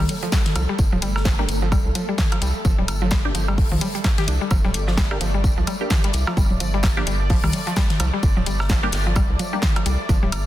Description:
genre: minimal techno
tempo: 129 BPM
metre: 4/4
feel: swing 58% on 16ths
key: unclear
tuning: A4 = 442 Hz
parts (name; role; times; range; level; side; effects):
- mallet-like synth pluck; riff; 0.0-10.3 s; F3 to G4; -28 LUFS; left 1 dB; chorus, sidechain pumping, dub echo
- rubbery square bass; bass; 0.0-10.5 s; D1 to C2; -23 LUFS; equal; sidechain pumping
- electronic toms, cowbell and congas; percussion; 0.0-10.4 s; none; -29 LUFS; equal; digital delay
- bubbling stepped-filter texture; texture; 0.0-10.5 s; A3 to D5; -32 LUFS; left 1 dB; chorus, built-in reverb, sidechain pumping
- house drum kit; drums; 0.1-10.4 s; hi-hat, snare drum; -27 LUFS; left 1 dB; none
- huge arena drum kit; drums; 0.1-10.5 s; hi-hat, snare drum, tambourine; -33 LUFS; left 1 dB; high-pass filter on hats, high-pass filter on snare, high-pass filter on perc, high-pass filter on room
- electronic kick drum; drums; 0.3-10.2 s; none; -21 LUFS; equal; none
- filtered dub chord stab; stabs; 1.4-9.6 s; Bb3 to G4; -29 LUFS; right 1 dB; phaser, digital delay
room: studio ambience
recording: dense, heavily limited modern master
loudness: -18 LUFS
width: side -14 dB against mid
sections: 0.0-10.5 A section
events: none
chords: 0.0 G5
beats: 0.32 | 0.79 1.25 1.72 2.19 | 2.65 3.12 3.58 4.04 | 4.51 4.97 5.44 5.91 | 6.37 6.84 7.30 7.77 | 8.23 8.70 9.16 9.63 | 10.09

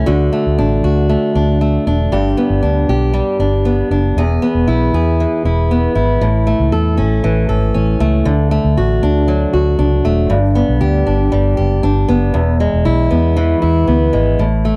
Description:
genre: pop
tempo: 117 BPM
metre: 4/4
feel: straight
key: A major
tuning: A4 = 435 Hz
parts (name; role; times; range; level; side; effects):
- fingerpicked steel-string acoustic guitar; accompaniment; 0.0-14.8 s; E2 to A4; -17 LUFS; equal; none
- vintage muted fingered electric bass; bass; 0.0-14.7 s; E1 to E2; -17 LUFS; equal; none
room: light reverb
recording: dry, close 1970s-style studio recording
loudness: -14 LUFS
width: mono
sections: 0.0-6.2 A section; 6.2-14.8 B section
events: none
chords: 0.1 D; 2.1 G; 4.2 E; 6.2 A; 8.3 D; 10.3 G; 12.3 E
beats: | 0.07 0.58 1.09 1.60 | 2.12 2.63 3.14 3.65 | 4.16 4.68 5.19 5.70 | 6.21 6.72 7.23 7.75 | 8.26 8.77 9.28 9.79 | 10.30 10.81 11.33 11.84 | 12.35 12.86 13.37 13.88 | 14.39

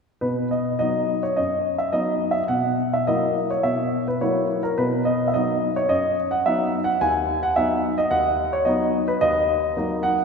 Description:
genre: classical-period piano sonatina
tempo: 107 BPM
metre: 4/4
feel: rubato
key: B major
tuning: A4 = 440 Hz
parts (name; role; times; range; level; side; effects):
- warm baby grand piano; solo; 0.2-10.2 s; D#2 to G#5; -20 LUFS; equal; none
room: wet concert hall reverb, RT60 2.5 s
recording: recorded in a church or concert hall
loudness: -20 LUFS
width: side -5 dB against mid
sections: 0.2-10.2 A section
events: none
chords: 0.2 B; 2.5 F#7/B; 4.8 B; 7.0 B/D#; 9.2 D#m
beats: | 0.21 0.80 1.37 1.93 | 2.50 3.07 3.64 4.21 | 4.77 5.33 5.88 6.44 | 7.00 7.56 8.11 8.66 | 9.21 9.76

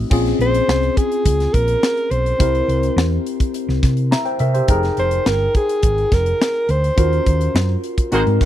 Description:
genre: polished 1980s jazz-funk pop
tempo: 105 BPM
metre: 4/4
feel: straight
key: unclear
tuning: A4 = 440 Hz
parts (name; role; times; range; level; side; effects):
- tine electric piano; accompaniment; 0.0-8.5 s; A3 to Bb5; -22 LUFS; left 2 dB; wide subtle chorus
- hollow-body short-scale fingered electric bass; bass; 0.0-8.4 s; F1 to C3; -19 LUFS; equal; none
- crisp fusion drum kit; drums; 0.1-8.5 s; crash cymbal, hi-hat, kick drum, snare drum; -19 LUFS; equal; none
- breathy alto saxophone; melody; 0.4-7.8 s; Ab4 to C5; -20 LUFS; equal; none
- mellow horn section; second line; 8.1-8.5 s; Ab3 to C5; -23 LUFS; right 4 dB; none
room: small room ambience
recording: dry, close 1970s-style studio recording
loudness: -15 LUFS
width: side -12 dB against mid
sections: 0.1-8.5 A section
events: band accent 7.0-8.5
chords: 0.1 Bbm9; 2.4 C7; 4.7 Fm11; 7.0 Ebm7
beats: | 0.11 0.68 1.25 1.83 | 2.40 2.97 3.55 4.12 | 4.69 5.26 5.84 6.41 | 6.98 7.56 8.13

